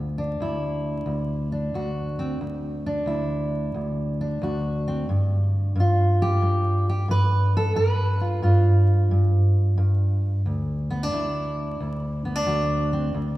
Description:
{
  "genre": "acoustic country blues, solo or duo",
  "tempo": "89 BPM",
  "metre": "4/4",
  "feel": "swing 67% on 8ths",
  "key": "unclear",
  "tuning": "A4 = 439 Hz",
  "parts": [
    { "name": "fingerpicked steel-string acoustic guitar", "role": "solo", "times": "0.0-13.4 s", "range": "D2 to B4", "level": "-21 LUFS", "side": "equal", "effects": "none" }
  ],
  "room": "wet concert hall reverb, RT60 2.3 s",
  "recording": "recorded in a church or concert hall, vinyl crackle",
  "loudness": "-21 LUFS",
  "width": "side -16 dB against mid",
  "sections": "0.0-13.4 A section",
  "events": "none",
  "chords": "0.0 D; 5.1 G7; 10.4 D",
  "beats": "0.38 1.06 1.73 | 2.40 3.07 3.74 4.41 | 5.08 5.75 6.42 7.09 | 7.76 8.44 9.11 9.78 | 10.45 11.12 11.79 12.47 | 13.14"
}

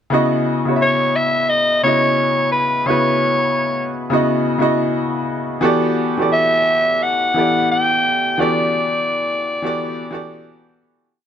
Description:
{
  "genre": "R&B",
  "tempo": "87 BPM",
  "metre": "4/4",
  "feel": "swing 61% on 16ths",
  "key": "unclear",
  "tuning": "A4 = 436 Hz",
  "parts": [
    { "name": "clear grand piano", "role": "accompaniment", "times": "0.1-11.2 s", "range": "C#3 to E5", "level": "-18 LUFS", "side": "equal", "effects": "none" },
    { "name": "raspy soprano saxophone", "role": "melody", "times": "0.8-10.8 s", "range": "B4 to G5", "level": "-16 LUFS", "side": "equal", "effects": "none" }
  ],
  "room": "light reverb",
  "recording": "none",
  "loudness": "-15 LUFS",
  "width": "side -9 dB against mid",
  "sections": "0.1-11.2 verse",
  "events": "fade-out 8.4-11.2",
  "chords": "0.1 C#m11; 5.6 Em11",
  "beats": "| 0.12 0.81 1.50 2.19 | 2.88 3.56 4.25 4.94 | 5.63 6.32 7.01 7.70 | 8.39 9.08 9.77 10.46"
}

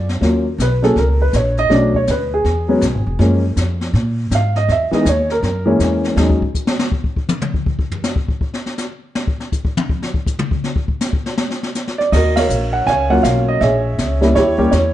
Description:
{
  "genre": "jazz piano trio",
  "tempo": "161 BPM",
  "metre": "4/4",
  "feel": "swing 64% on 8ths",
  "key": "Eb minor",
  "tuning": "A4 = 438 Hz",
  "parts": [
    { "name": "warm baby grand piano", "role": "melody", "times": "0.0-6.4, 12.0-14.9 s", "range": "Fb3 to Ab5", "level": "-16 LUFS", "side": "right 1 dB", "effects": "plate reverb" },
    { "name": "upright bass", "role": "bass", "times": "0.0-6.4, 12.1-14.9 s", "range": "E1 to Bb2", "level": "-17 LUFS", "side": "equal", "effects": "none" },
    { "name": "jazz brush drum kit", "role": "drums", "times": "0.1-14.9 s", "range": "brushed snare drum, crash cymbal, hi-hat, kick drum, ride cymbal, snare drum, toms", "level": "-21 LUFS", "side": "left 2 dB", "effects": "none" }
  ],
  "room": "light reverb",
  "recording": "dark, warm production, nothing above 10.6 kHz",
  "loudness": "-14 LUFS",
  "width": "side -13 dB against mid",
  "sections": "0.2-12.1 A section; 12.1-14.9 B section",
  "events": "grand piano solo 0.2-12.1; drum solo 6.2-12.1; band accent 12.3",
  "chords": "0.2 Ebm7; 1.7 Bm7; 2.5 E; 3.2 Gbmaj9; 4.7 Dbmadd9; 5.4 Gb9; 6.2 N.C.; 12.1 Ebm9; 13.6 Bbm7b5; 14.4 Eb7b9",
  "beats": "| 0.22 0.59 0.96 1.34 | 1.71 2.08 2.46 2.83 | 3.20 3.57 3.94 4.32 | 4.69 5.06 5.43 5.80 | 6.18 6.55 6.92 7.29 | 7.66 8.04 8.41 8.78 | 9.15 9.52 9.89 10.27 | 10.64 11.01 11.38 11.75 | 12.12 12.49 12.87 13.24 | 13.61 13.98 14.35 14.73"
}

